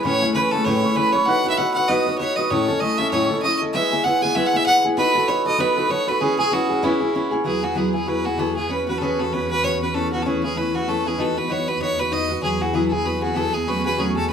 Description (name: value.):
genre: celtic folk, Celtic reel.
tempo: 194 BPM.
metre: 4/4.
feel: swing 56% on 8ths.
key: E major.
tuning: A4 = 440 Hz.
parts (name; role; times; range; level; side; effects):
bright fiddle; melody; 0.0-14.3 s; E4 to G#5; -22 LUFS; equal; none.
hammered dulcimer; second line; 0.0-10.3 s; E4 to F#5; -24 LUFS; right 4 dB; none.
picked steel-string acoustic guitar; accompaniment; 0.0-14.3 s; A2 to B4; -22 LUFS; left 1 dB; none.
rich studio string section; drone; 7.5-14.3 s; E2; -29 LUFS; right 1 dB; none.
room: moderate studio reverb, RT60 0.5 s.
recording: band playing live in one room.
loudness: -18 LUFS.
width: side -7 dB against mid.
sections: 0.0-7.5 A section; 7.5-14.3 B section.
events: none.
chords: 0.0 A; 1.3 B; 2.5 A; 3.7 E/G#; 5.0 B7; 6.2 E6; 7.5 Eadd9; 8.7 Bsus2; 9.9 Aadd9; 11.2 B; 12.4 Eadd9; 13.7 F#madd9.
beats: | 0.04 0.35 0.66 0.97 | 1.27 1.58 1.89 2.20 | 2.51 2.82 3.13 3.44 | 3.74 4.05 4.36 4.67 | 4.98 5.29 5.60 5.91 | 6.21 6.52 6.83 7.14 | 7.45 7.76 8.07 8.38 | 8.70 9.01 9.32 9.63 | 9.94 10.25 10.56 10.87 | 11.18 11.49 11.80 12.11 | 12.43 12.74 13.05 13.36 | 13.67 13.98 14.29.